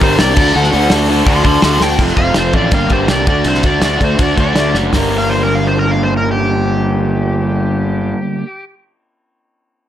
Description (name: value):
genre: garage rock duo or trio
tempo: 164 BPM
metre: 4/4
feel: straight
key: G minor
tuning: A4 = 436 Hz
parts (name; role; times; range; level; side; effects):
- overdriven slide guitar; melody; 0.0-8.6 s; G4 to C6; -18 LUFS; left 1 dB; none
- crunchy overdriven guitar; riff; 0.0-8.5 s; F2 to Bb4; -15 LUFS; equal; none
- fuzz fingered electric bass; bass; 0.0-8.1 s; F1 to D2; -17 LUFS; equal; overdrive
- cloth-damped thuddy drum kit; drums; 0.0-5.0 s; crash cymbal, hi-hat, kick drum, ride cymbal, snare drum, toms; -16 LUFS; equal; none
room: little or no reverb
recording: none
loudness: -11 LUFS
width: side -11 dB against mid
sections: 0.0-2.0 A section; 2.0-4.9 B section; 4.9-7.9 C section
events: drum fill 1.8, 4.7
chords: 0.4 D; 2.0 F; 2.7 Gm; 3.3 D; 4.9 Gm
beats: 0.19 | 0.55 0.91 1.27 1.64 | 2.00 2.36 2.73 3.09 | 3.46 3.82 4.19 4.55 | 4.92 5.29 5.66 6.02 | 6.39 6.76 7.12 7.49